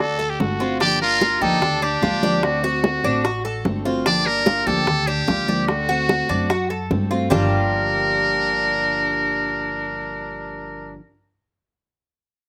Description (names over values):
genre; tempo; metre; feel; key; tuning
latin, Cuban son and guajira; 148 BPM; 4/4; straight; unclear; A4 = 439 Hz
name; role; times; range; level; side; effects
trumpet with metal mute; melody; 0.0-11.0 s; F#4 to D5; -24 LUFS; equal; slapback echo
growling trumpet; second line; 0.0-2.6, 7.3-11.0 s; D4 to A4; -30 LUFS; equal; none
picked steel-string acoustic guitar; accompaniment; 0.0-11.0 s; G2 to G4; -29 LUFS; equal; none
Cuban tres; arpeggios; 0.0-11.0 s; G3 to D5; -28 LUFS; equal; slapback echo
upright bass; bass; 0.0-11.0 s; G1 to G2; -30 LUFS; equal; none
bongos; percussion; 0.0-7.4 s; none; -26 LUFS; equal; none
congas; percussion; 0.2-7.4 s; none; -29 LUFS; equal; none
room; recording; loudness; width
little or no reverb; recorded outdoors, with no room sound; -20 LUFS; mono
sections
0.8-7.3 A section; 7.3-10.6 B section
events
none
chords
0.0 D7; 0.8 Gm7; 2.4 D7; 4.1 Gm7; 5.7 D7; 7.3 Gm7